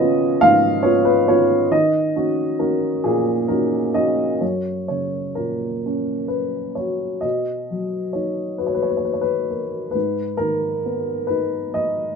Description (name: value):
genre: classical, lyrical solo piano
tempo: 44 BPM (dotted quarters)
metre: 6/8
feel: uneven beats, rubato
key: Eb minor, F# major from 4.4 s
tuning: A4 = 440 Hz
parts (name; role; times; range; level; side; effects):
- dark upright piano; solo; 0.0-12.2 s; F#2 to F5; -18 LUFS; equal; none
room: light reverb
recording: minimal, uncompressed stereo recording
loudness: -18 LUFS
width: side -5 dB against mid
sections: 0.0-4.4 A section; 4.4-12.2 B section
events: none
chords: 0.0 Db7; 1.7 Ebm7; 4.4 F#; 7.2 Bmaj7; 9.9 G#m